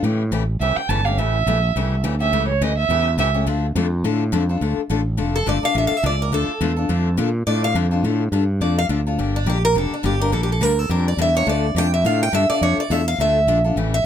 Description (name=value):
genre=acoustic string swing (jazz manouche)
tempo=210 BPM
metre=4/4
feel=swing 57% on 8ths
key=D harmonic minor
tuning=A4 = 439 Hz
part: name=picked steel-string acoustic guitar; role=accompaniment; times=0.0-14.0 s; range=C#3 to A4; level=-24 LUFS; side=left 7 dB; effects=none
part: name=fretless electric bass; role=bass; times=0.0-14.0 s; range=F1 to Bb2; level=-20 LUFS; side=right 1 dB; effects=none
part: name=dark violin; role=second line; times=0.6-3.3 s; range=C#5 to A5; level=-21 LUFS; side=right 7 dB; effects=none
part: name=picked steel-string acoustic guitar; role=melody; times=5.4-14.1 s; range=D4 to G5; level=-20 LUFS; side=right 1 dB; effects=slapback echo
room=light reverb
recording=close, detailed microphones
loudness=-17 LUFS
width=side -9 dB against mid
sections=0.0-4.6 A section; 4.6-14.1 A section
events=violin solo 0.0-4.6; steel-string acoustic guitar solo 4.6-14.1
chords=0.0 A7#9; 3.5 Dm; 9.2 Gm; 11.5 Dm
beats=| 0.03 0.32 0.60 0.89 | 1.18 1.46 1.75 2.03 | 2.32 2.61 2.89 3.18 | 3.46 3.75 4.04 4.32 | 4.61 4.89 5.18 5.46 | 5.75 6.04 6.32 6.61 | 6.89 7.18 7.46 7.75 | 8.04 8.32 8.61 8.89 | 9.18 9.46 9.75 10.04 | 10.32 10.61 10.89 11.18 | 11.47 11.75 12.04 12.32 | 12.61 12.90 13.18 13.47 | 13.76 14.04